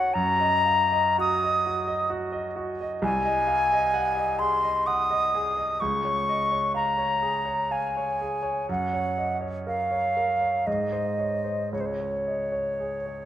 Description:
classical, romantic duo for flute and grand piano; 55-67 BPM; 3/4; rubato; Db major from 3.0 s; A4 = 441 Hz
concert flute; melody; 0.0-13.3 s; C5 to Eb6; -24 LUFS; left 1 dB
bright grand piano; accompaniment; 0.0-13.3 s; C2 to Gb5; -29 LUFS; right 2 dB
wet recital hall reverb, RT60 1.6 s; dark, warm production; -23 LUFS; side -11 dB against mid
0.0-13.3 A section
0.1 Ebm/Gb; 3.0 Ab7/C; 5.8 Db; 8.7 Gb; 10.7 Ab; 11.7 Db5

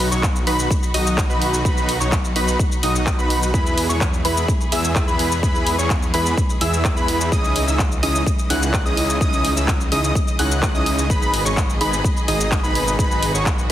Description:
EDM, festival progressive house; 127 BPM; 4/4; straight; B major; A4 = 440 Hz
rich symphonic string section; sustained chords; 0.0-13.7 s; B2 to D#5; -29 LUFS; left 2 dB; sidechain pumping
wide unison lead; arpeggios; 0.0-13.7 s; B5 to F#6; -24 LUFS; equal; sidechain pumping, digital delay
dense compressed supersaw; riff; 0.0-13.7 s; C#4 to F#5; -24 LUFS; right 1 dB; sidechain pumping, digital delay
wide detuned saw bass; bass; 0.0-13.7 s; G#1 to E2; -24 LUFS; equal; chorus, sidechain pumping
big-room dance drum kit; drums; 0.0-13.7 s; handclaps, hi-hat, shaker; -25 LUFS; left 1 dB; studio reverb
electronic kick drum; drums; 0.2-13.6 s; -21 LUFS; equal; studio reverb
light reverb; heavily compressed radio sound, multiband compression; -16 LUFS; side -12 dB against mid
0.0-13.7 A section
0.0 B; 3.5 E; 7.3 C#madd9; 11.1 G#m

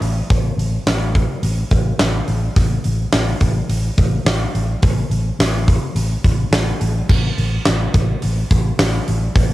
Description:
hard rock; 106 BPM; 4/4; straight; A4 = 440 Hz
fingered electric bass; bass; 0.0-9.5 s; A1; -19 LUFS; equal
huge arena drum kit; drums; 0.0-9.5 s; crash cymbal, hi-hat, kick drum, snare drum; -17 LUFS; equal; cassette tape
light reverb; home recording on cassette; -15 LUFS; side -16 dB against mid
0.0-9.5 A section

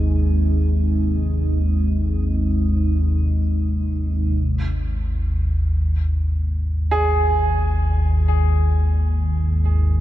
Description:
dark ambient drone; free time; Ab major; A4 = 440 Hz
sweeping resonant pad; sustained chords; 0.0-4.4 s; C3 to Eb4; -26 LUFS; right 1 dB; tremolo, lush chorus, shimmer reverb
deep rumbling drone; drone; 0.0-10.0 s; Ab1 to Eb2; -18 LUFS; equal; built-in reverb, phaser, wide subtle chorus
clear baby grand piano; arpeggios; 6.9-10.0 s; Ab4; -24 LUFS; right 1 dB; ping-pong delay, shimmer reverb
wet cathedral reverb, RT60 5.6 s; dark, warm production; -18 LUFS; side -14 dB against mid
0.0-4.4 A section; 4.4-10.0 B section
0.0 Cm/Ab; 4.4 Ab5

